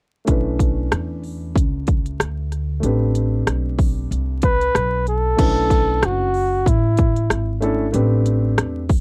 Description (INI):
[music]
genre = hip hop, jazz-hop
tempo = 94 BPM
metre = 4/4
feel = swing 58% on 16ths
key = B minor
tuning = A4 = 440 Hz
[part]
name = dark concert grand piano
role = accompaniment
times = 0.2-8.8 s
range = A3 to B4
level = -27 LUFS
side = equal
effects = none
[part]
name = upright bass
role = bass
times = 0.3-9.0 s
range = F#1 to E2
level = -24 LUFS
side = equal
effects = none
[part]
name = house drum kit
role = drums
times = 0.3-9.0 s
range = crash cymbal, hi-hat, kick drum, rim click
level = -21 LUFS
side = equal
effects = none
[part]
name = mellow flugelhorn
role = melody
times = 4.4-7.6 s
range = E4 to B4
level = -22 LUFS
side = equal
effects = none
[sound]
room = little or no reverb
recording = dry, close 1970s-style studio recording, vinyl crackle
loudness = -19 LUFS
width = mono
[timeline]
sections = 0.3-5.4 A section; 5.4-9.0 B section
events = none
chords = 0.3 Bm11; 2.8 Am11; 5.4 Bm11; 7.9 Am11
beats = | 0.28 0.92 1.56 2.19 | 2.83 3.47 4.11 4.75 | 5.39 6.02 6.66 7.30 | 7.94 8.58